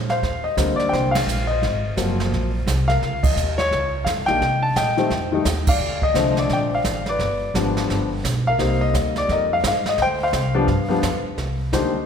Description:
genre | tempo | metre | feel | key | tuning
jazz piano trio | 172 BPM | 4/4 | swing 62% on 8ths | C minor | A4 = 439 Hz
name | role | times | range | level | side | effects
upright bass | bass | 0.0-12.1 s | Gb1 to C3 | -24 LUFS | right 1 dB | none
warm grand piano | melody | 0.1-12.1 s | D3 to A5 | -21 LUFS | left 3 dB | none
jazz brush drum kit | drums | 0.1-12.1 s | brushed snare drum, crash cymbal, hi-hat, kick drum, ride cymbal, snare drum | -26 LUFS | right 3 dB | none
room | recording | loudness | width
wet scoring stage reverb, RT60 1.8 s | recorded in a church or concert hall | -18 LUFS | side -7 dB against mid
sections
0.2-11.4 A section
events
band accent 1.1, 3.2, 5.6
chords
0.2 Ebmaj13; 1.6 Ab13; 3.0 Db69; 4.4 Cm7; 5.1 F7(no3); 5.8 Bbmaj7; 7.2 G7; 8.6 Cm9; 10.0 Csus24; 10.7 G7(no3); 11.4 Cm7

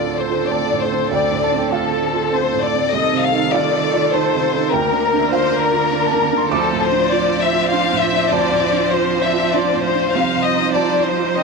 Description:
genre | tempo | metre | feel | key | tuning
neoclassical piano and strings | 99 BPM | 3/4 | rubato | D minor | A4 = 440 Hz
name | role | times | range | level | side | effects
rich chamber violin section | melody | 0.0-11.4 s | A4 to F5 | -18 LUFS | left 8 dB | tape echo
rich cello | second line | 0.0-11.4 s | D3 to F3 | -25 LUFS | right 11 dB | none
felt-muted upright piano | accompaniment | 0.0-11.4 s | C2 to D6 | -21 LUFS | right 12 dB | none
rich viola | accompaniment | 0.0-11.4 s | A4 to C5 | -25 LUFS | right 12 dB | none
rich symphonic string section | sustained chords | 0.0-11.4 s | A3 to D5 | -28 LUFS | left 1 dB | none
room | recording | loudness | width
light reverb, small room ambience | 1960s-style stereo with parts hard left and right | -15 LUFS | side -4 dB against mid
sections
0.0-11.4 A section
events
none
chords
0.0 Dm7; 2.9 F7/C; 4.7 Bb/D; 6.5 Dm7; 10.1 F7/C

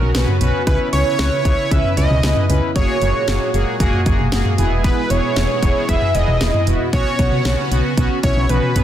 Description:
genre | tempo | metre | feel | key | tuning
synth-pop | 115 BPM | 4/4 | straight | unclear | A4 = 440 Hz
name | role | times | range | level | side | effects
analog synth brass | accompaniment | 0.0-8.8 s | A#3 to B4 | -22 LUFS | right 1 dB | chorus
lush unison pad | sustained chords | 0.0-8.8 s | A#2 to F#4 | -26 LUFS | left 1 dB | chorus
solid FM bass | bass | 0.0-8.8 s | E1 to C#2 | -19 LUFS | equal | none
house drum kit | drums | 0.1-8.8 s | hi-hat, kick drum, snare drum, toms | -19 LUFS | equal | none
fat analog lead | melody | 0.7-8.8 s | B4 to E5 | -21 LUFS | right 1 dB | digital delay
room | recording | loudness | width
light reverb | dense, heavily limited modern master | -14 LUFS | side -11 dB against mid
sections
0.0-8.8 A section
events
drum fill 8.5-8.8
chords
0.0 Bsus2; 0.7 C#m7; 2.8 F#add9; 4.6 E; 6.9 Bsus2

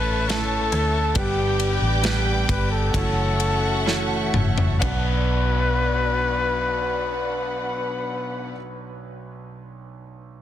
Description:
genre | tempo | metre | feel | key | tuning
pop ballad | 62-70 BPM | 4/4 | straight | B minor | A4 = 440 Hz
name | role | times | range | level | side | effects
breathy flugelhorn | melody | 0.0-8.5 s | G4 to B4 | -26 LUFS | left 3 dB | ping-pong delay
dark studio violin section | second line | 0.0-8.5 s | D4 to A5 | -31 LUFS | equal | none
clear grand piano | accompaniment | 0.0-10.4 s | B1 to E5 | -30 LUFS | right 5 dB | none
warm studio string section | sustained chords | 0.0-8.5 s | F#4 to D6 | -32 LUFS | equal | none
picked steel-string acoustic guitar | arpeggios | 0.0-8.7 s | F#2 to A4 | -32 LUFS | left 6 dB | ping-pong delay
vintage muted fingered electric bass | bass | 0.0-8.5 s | F#1 to D2 | -24 LUFS | equal | none
modern studio drum kit | drums | 0.3-5.0 s | kick drum, ride cymbal, snare drum, toms | -27 LUFS | left 1 dB | none
room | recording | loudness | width
light reverb | dense, heavily limited modern master | -20 LUFS | side -11 dB against mid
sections
0.0-4.8 A section; 4.8-8.7 B section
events
slowing down 0.0-4.8; drum fill 3.9-4.8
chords
0.0 A; 1.2 G; 2.9 F#m7; 4.8 Bm

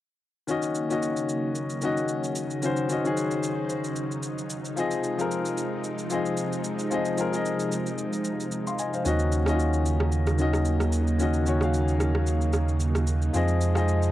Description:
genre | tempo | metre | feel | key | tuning
amapiano | 112 BPM | 4/4 | swing 55% on 16ths | Eb dorian | A4 = 440 Hz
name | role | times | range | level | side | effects
warm grand piano | accompaniment | 0.5-14.1 s | Eb3 to C6 | -27 LUFS | left 3 dB | none
string machine, violas | sustained chords | 0.5-14.1 s | C3 to C5 | -31 LUFS | right 2 dB | ensemble chorus
electronic shaker and rim click | drums | 0.5-14.1 s | none | -34 LUFS | right 1 dB | overdrive
warm sub bass | bass | 9.1-14.1 s | Eb2 to F2 | -24 LUFS | right 1 dB | none
room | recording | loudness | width
moderate booth ambience, RT60 0.3 s | home recording on cassette | -24 LUFS | side -14 dB against mid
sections
0.5-14.1 A section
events
none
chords
0.5 Ebm7; 4.8 Fm7; 9.1 Ebm7; 13.3 Fm7

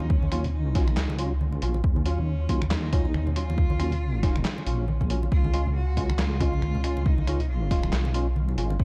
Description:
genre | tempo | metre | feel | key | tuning
deep dubstep | 138 BPM | 4/4 | swing 58% on 16ths, half-time | Eb minor | A4 = 440 Hz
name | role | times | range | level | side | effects
clear cello | melody | 0.0-8.8 s | Db4 to Gb4 | -39 LUFS | equal | vintage 12-bit sampler grit, dub echo
percussive organ stab | stabs | 0.0-8.8 s | Gb3 to F4 | -36 LUFS | equal | ensemble chorus, dub echo
deep soft wobble bass | bass | 0.0-8.8 s | Ab1 to Eb2 | -28 LUFS | equal | chorus
congas | percussion | 0.0-8.8 s | none | -37 LUFS | equal | none
electronic kick drum | drums | 0.1-8.8 s | none | -27 LUFS | equal | overdrive
trip hop sampler-style drum kit | drums | 0.3-8.7 s | finger snaps, handclaps, hi-hat, snare drum | -35 LUFS | equal | none
room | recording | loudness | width
little or no reverb | dark, warm production | -25 LUFS | mono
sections
0.0-8.8 A section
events
none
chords
0.0 Ebm7; 5.3 Db

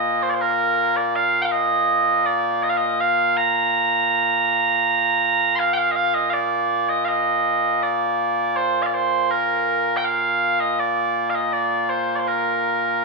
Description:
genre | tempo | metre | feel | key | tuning
scottish traditional, Scottish pipe music | 81 BPM | 3/4 | straight | Bb major | A4 = 439 Hz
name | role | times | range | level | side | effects
mellow small bagpipes | solo | 0.0-13.0 s | Bb2 to C6 | -18 LUFS | right 1 dB | none
room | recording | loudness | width
moderate large studio reverb, RT60 1.1 s | band playing live in one room | -18 LUFS | side -2 dB against mid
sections
0.0-5.6 A section; 5.6-13.0 B section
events
none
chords
none

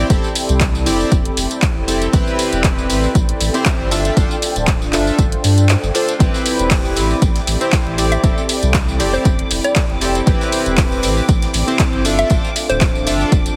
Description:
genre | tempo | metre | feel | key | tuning
deep house | 118 BPM | 4/4 | swing 54% on 16ths | A minor | A4 = 439 Hz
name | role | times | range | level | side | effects
warm analog pad | sustained chords | 0.0-13.6 s | C4 to B5 | -28 LUFS | equal | chorus, sidechain pumping
chorused polysynth | stabs | 0.0-13.4 s | C4 to E5 | -23 LUFS | equal | sidechain pumping, dub echo
warm sub bass | bass | 0.0-13.5 s | D1 to G2 | -22 LUFS | equal | sidechain pumping
ethereal airy pad | texture | 0.0-13.6 s | A4 to B5 | -30 LUFS | equal | ensemble chorus, built-in reverb, phaser, sidechain pumping
electronic kick drum | drums | 0.1-13.4 s | none | -18 LUFS | equal | none
punchy analog drum machine | drums | 0.1-13.6 s | handclaps, hi-hat, tambourine | -24 LUFS | equal | none
deep reggae drum kit | drums | 6.2-13.5 s | hi-hat, ride cymbal, snare drum | -36 LUFS | equal | none
dark studio violin section | texture | 6.2-13.6 s | D6 | -34 LUFS | equal | none
hollow square pluck | melody | 8.1-13.2 s | C5 to E5 | -25 LUFS | equal | chorus, digital delay
room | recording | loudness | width
light reverb, studio ambience | heavily compressed radio sound, multiband compression | -16 LUFS | mono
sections
0.0-13.6 A section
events
kick drops out 5.7-6.2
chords
0.1 Fmaj9; 2.1 Am9; 3.9 G7sus4; 6.2 Am9; 8.2 Fmaj9; 10.3 Am9; 12.1 G7sus4

